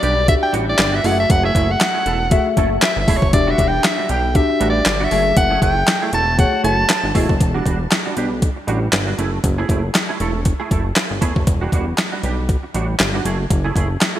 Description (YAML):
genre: early-eighties boogie funk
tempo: 118 BPM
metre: 4/4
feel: swing 56% on 16ths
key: unclear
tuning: A4 = 442 Hz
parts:
  - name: bright soprano saxophone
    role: melody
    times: 0.0-7.1 s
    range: C#5 to A5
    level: -19 LUFS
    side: equal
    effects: digital delay
  - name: semi-hollow electric guitar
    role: riff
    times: 0.0-14.2 s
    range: G3 to A4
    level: -25 LUFS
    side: right 5 dB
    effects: ensemble chorus
  - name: chorused synth bass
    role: bass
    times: 0.0-14.0 s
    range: E1 to B1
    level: -21 LUFS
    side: equal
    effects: none
  - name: crisp 8-bit digital drum machine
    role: drums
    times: 0.0-14.1 s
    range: handclaps, hi-hat, kick drum, snare drum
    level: -18 LUFS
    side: equal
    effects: overdrive, gated reverb
  - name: tine electric piano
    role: accompaniment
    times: 0.3-7.3 s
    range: F#3 to E5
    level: -22 LUFS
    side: left 3 dB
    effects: lush chorus
room: moderate lush hall reverb, RT60 2.6 s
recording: bright 1980s-style digital production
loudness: -15 LUFS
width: side -12 dB against mid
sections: 0.0-7.4 A section; 7.4-14.2 B section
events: soprano saxophone solo 0.0-7.4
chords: 0.0 Em9; 1.0 F#m9; 3.3 Em9; 5.1 F#m9; 7.4 Em9; 9.2 F#m9; 11.5 Em9; 13.2 F#m9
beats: 0.28 0.79 | 1.30 1.81 2.32 2.83 | 3.33 3.84 4.35 4.86 | 5.37 5.88 6.39 6.89 | 7.40 7.91 8.42 8.93 | 9.44 9.95 10.45 10.96 | 11.47 11.98 12.49 13.00 | 13.51 14.01